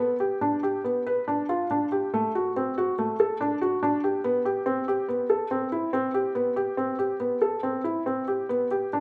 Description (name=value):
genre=contemporary instrumental, contemporary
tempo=141 BPM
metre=5/4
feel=straight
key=A minor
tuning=A4 = 440 Hz
part: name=felt-muted upright piano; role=solo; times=0.0-9.0 s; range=A3 to B4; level=-26 LUFS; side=equal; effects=none
room=wet recital hall reverb, RT60 1.5 s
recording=none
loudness=-26 LUFS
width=mono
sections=0.0-9.0 A section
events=none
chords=none